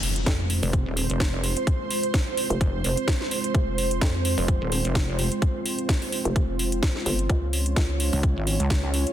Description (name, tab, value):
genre	bass house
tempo	128 BPM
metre	4/4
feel	swing 55% on 16ths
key	F minor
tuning	A4 = 440 Hz
part	dark analog pad	sustained chords	0.0-9.1 s	Ab3 to Db5	-30 LUFS	right 1 dB	chorus, sidechain pumping
part	hollow knocking FM bass	bass	0.0-8.1 s	F1 to F2	-26 LUFS	equal	tube saturation, sidechain pumping
part	house drum kit	drums	0.0-9.1 s	hi-hat, snare drum	-29 LUFS	equal	overdrive
part	impact	sound effects	0.0-1.7 s	none	-35 LUFS	equal	none
part	ethereal airy pad	texture	0.2-9.1 s	C5 to Db5	-33 LUFS	right 6 dB	ensemble chorus, built-in reverb, sidechain pumping
part	electronic kick drum	drums	0.3-8.8 s	none	-25 LUFS	equal	none
part	pulsing pluck wobble bass	bass	0.6-5.3, 8.1-9.0 s	Eb1 to Db2	-26 LUFS	equal	chorus, overdrive, sidechain pumping
room	light reverb, digital ambience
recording	dense, heavily limited modern master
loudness	-22 LUFS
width	side -11 dB against mid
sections	0.0-9.1 A section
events	impact 0.0-1.7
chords	0.0 Fm; 7.3 Db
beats	0.26 0.73 1.20 | 1.67 2.14 2.61 3.08 | 3.55 4.01 4.48 4.95 | 5.42 5.89 6.36 6.83 | 7.30 7.76 8.23 8.70